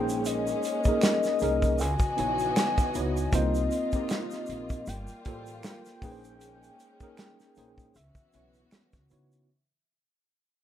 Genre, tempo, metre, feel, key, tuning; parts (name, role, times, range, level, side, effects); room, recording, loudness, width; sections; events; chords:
R&B, neo-soul; 78 BPM; 4/4; swing 56% on 16ths; A4 = 440 Hz
warm velvety synth lead; melody; 0.0-8.7 s; Eb5 to Ab5; -31 LUFS; left 4 dB; chorus
tine electric piano; accompaniment; 0.0-9.5 s; Bb3 to Db5; -32 LUFS; right 1 dB; overdrive, fast stereo tremolo
warm studio string section; sustained chords; 0.0-9.5 s; C3 to Eb5; -38 LUFS; equal
upright bass; bass; 0.0-9.4 s; G1 to Db3; -33 LUFS; equal
warm soul drum kit; drums; 0.1-9.5 s; hi-hat, kick drum, snare drum; -29 LUFS; equal
egg shaker and finger snaps; percussion; 0.1-9.5 s; -43 LUFS; right 4 dB
wet small room reverb, RT60 0.5 s; rough home demo mix; -25 LUFS; side -10 dB against mid
0.0-9.5 A section
fade-out 0.0-9.5
0.0 Bbm11; 1.8 Dbm11; 3.3 Cm7; 4.9 Gm11; 6.0 Bbm11; 7.9 Dbm11